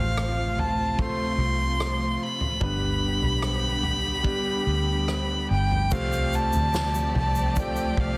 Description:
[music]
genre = pop ballad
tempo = 73 BPM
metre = 4/4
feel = straight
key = unclear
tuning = A4 = 440 Hz
[part]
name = dark violin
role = melody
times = 0.0-8.2 s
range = F5 to C6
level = -30 LUFS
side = equal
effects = none
[part]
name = warm concert grand piano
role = accompaniment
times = 0.0-8.2 s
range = G2 to D5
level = -33 LUFS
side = equal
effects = none
[part]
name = warm symphonic string section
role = sustained chords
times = 0.0-8.2 s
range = C3 to G4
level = -37 LUFS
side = equal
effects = none
[part]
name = vintage muted fingered electric bass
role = bass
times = 0.0-8.2 s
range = G1 to D2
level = -30 LUFS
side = equal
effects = none
[part]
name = unplugged drum kit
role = drums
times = 0.2-8.2 s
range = crash cymbal, kick drum, rim click, snare drum, toms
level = -33 LUFS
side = equal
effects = soft clipping on snare
[part]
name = warm studio violin section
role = second line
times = 5.9-8.2 s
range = A3 to D5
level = -40 LUFS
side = equal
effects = none
[part]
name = tube shaker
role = percussion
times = 5.9-8.0 s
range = none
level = -45 LUFS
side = equal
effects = none
[sound]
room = light reverb, small room ambience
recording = dense, heavily limited modern master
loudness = -25 LUFS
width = mono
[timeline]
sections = 0.0-5.9 A section; 5.9-8.2 B section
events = none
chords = 0.0 F; 2.6 G; 5.9 Fadd9/C

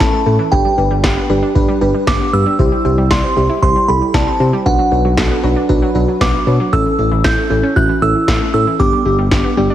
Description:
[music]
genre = synth-pop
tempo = 116 BPM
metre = 4/4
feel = straight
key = unclear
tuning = A4 = 440 Hz
[part]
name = glassy synth bell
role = melody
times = 0.0-9.7 s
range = F#5 to G6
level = -18 LUFS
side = right 2 dB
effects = chorus, tape echo
[part]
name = FM electric piano with soft pad layer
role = accompaniment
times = 0.0-9.7 s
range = B3 to D5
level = -17 LUFS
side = equal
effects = chorus
[part]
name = analog pluck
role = arpeggios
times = 0.0-9.7 s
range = E3 to E4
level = -22 LUFS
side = left 1 dB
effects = chorus, tape echo
[part]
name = smooth synth bass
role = bass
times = 0.0-9.7 s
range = G1 to C3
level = -17 LUFS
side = equal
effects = none
[part]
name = electro analog drum machine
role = drums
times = 0.0-9.4 s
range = kick drum, snare drum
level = -18 LUFS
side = equal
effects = none
[sound]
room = moderate lush hall reverb, RT60 1.8 s, digital ambience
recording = heavily compressed radio sound, multiband compression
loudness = -11 LUFS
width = side -12 dB against mid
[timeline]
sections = 0.0-9.7 A section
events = none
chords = 0.0 A; 0.5 G; 2.6 C; 4.7 Bm; 6.7 A; 8.8 G

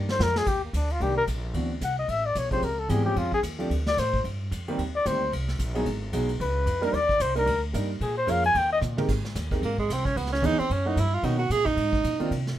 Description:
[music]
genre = jazz, small-group swing and bop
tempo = 223 BPM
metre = 4/4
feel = swing 59% on 8ths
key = Eb major, Ab major from 9.1 s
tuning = A4 = 440 Hz
[part]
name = warm grand piano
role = accompaniment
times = 0.0-12.3 s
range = Eb3 to Bb4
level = -30 LUFS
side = right 2 dB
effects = none
[part]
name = upright bass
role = bass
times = 0.0-12.6 s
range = Ab1 to C3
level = -29 LUFS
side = equal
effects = none
[part]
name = warm flugelhorn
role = melody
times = 0.1-8.8 s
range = Bb3 to Ab5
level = -25 LUFS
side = left 2 dB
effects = none
[part]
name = vintage brush drum kit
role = drums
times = 0.1-12.5 s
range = crash cymbal, hi-hat, kick drum, ride cymbal, snare drum, toms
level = -34 LUFS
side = equal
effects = none
[part]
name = warm tenor saxophone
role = second line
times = 9.6-12.3 s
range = Ab3 to Ab4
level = -26 LUFS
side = right 4 dB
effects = none
[sound]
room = light reverb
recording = minimal, uncompressed stereo recording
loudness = -23 LUFS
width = side -12 dB against mid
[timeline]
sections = 0.5-9.1 A section; 9.1-12.6 A section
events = drum fill 0.0-0.5, 8.8; flugelhorn solo 0.0-9.1; tenor saxophone solo 9.1-12.6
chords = 0.5 Ebmaj7; 1.5 D13; 2.6 Dbmaj7; 3.7 D5; 4.2 F9sus4; 4.8 Cm7; 5.9 Abm7; 6.4 Db9; 6.9 Ebmaj7; 8.0 Bbm7; 8.5 Eb; 9.1 Ab; 10.2 Dbm9; 10.7 Gb7b9; 11.2 Bmaj9

